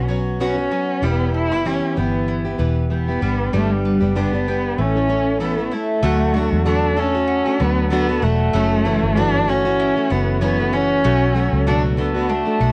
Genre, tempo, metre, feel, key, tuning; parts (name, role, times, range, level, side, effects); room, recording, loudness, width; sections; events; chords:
acoustic pop; 96 BPM; 4/4; swing 55% on 16ths; D major; A4 = 440 Hz
dark cello; melody; 0.0-12.7 s; G3 to E4; -23 LUFS; equal
picked plugged-in steel-string acoustic guitar; accompaniment; 0.0-12.7 s; F#2 to A4; -24 LUFS; equal
mandolin; arpeggios; 0.0-12.7 s; G3 to G5; -31 LUFS; equal
vintage muted fingered electric bass; bass; 0.0-12.7 s; E1 to E2; -24 LUFS; equal
light reverb; worn, warbling old tape, cassette tape, warbly pitch drift; -19 LUFS; mono
0.0-6.0 A section; 6.0-12.7 B section
0.0 Bsus2; 1.0 Em; 3.2 G; 4.8 A; 6.0 D; 8.5 F#m7; 11.0 Bm7